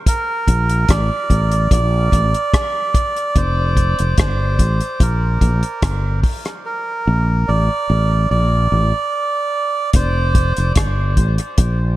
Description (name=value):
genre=dub reggae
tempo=73 BPM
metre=4/4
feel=straight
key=Bb major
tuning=A4 = 438 Hz
part: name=melodica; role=melody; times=0.1-10.7 s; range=Bb4 to D5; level=-20 LUFS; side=right 3 dB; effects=dub echo
part: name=damped 70s drum kit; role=drums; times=0.1-11.8 s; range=hi-hat, kick drum, rim click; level=-16 LUFS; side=equal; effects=none
part: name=fretless electric bass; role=bass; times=0.5-12.0 s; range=F1 to Bb1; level=-16 LUFS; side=equal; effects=none
room=small room ambience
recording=echo-heavy mix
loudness=-14 LUFS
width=side -16 dB against mid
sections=0.0-12.0 A section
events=part muted 6.6-9.9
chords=0.1 Bbmaj7; 3.4 Fsus4; 6.6 Bbmaj7; 9.9 Fsus4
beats=| 0.06 0.89 1.71 2.53 | 3.35 4.18 5.00 5.82 | 6.65 7.47 8.29 9.11 | 9.94 10.76 11.58